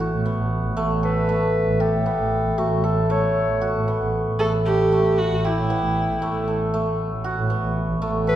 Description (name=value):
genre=contemporary instrumental, chamber music in an uneven meter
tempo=232 BPM (eighths)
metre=7/8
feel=straight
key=A mixolydian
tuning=A4 = 440 Hz
part: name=mellow clarinet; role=melody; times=0.0-3.7, 8.3-8.4 s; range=F#4 to C#5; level=-25 LUFS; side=left 1 dB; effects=none
part: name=hammered dulcimer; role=arpeggios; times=0.0-8.4 s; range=A3 to A4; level=-23 LUFS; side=equal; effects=none
part: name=clear double bass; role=bass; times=0.1-8.4 s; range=A1 to A2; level=-24 LUFS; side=right 1 dB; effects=none
part: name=warm viola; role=second line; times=4.4-6.5 s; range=E4 to A4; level=-24 LUFS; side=right 1 dB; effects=none
room=wet recital hall reverb, RT60 1.5 s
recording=minimal, uncompressed stereo recording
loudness=-19 LUFS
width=side -12 dB against mid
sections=0.0-8.4 A section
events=none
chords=0.0 Asus2; 2.6 A69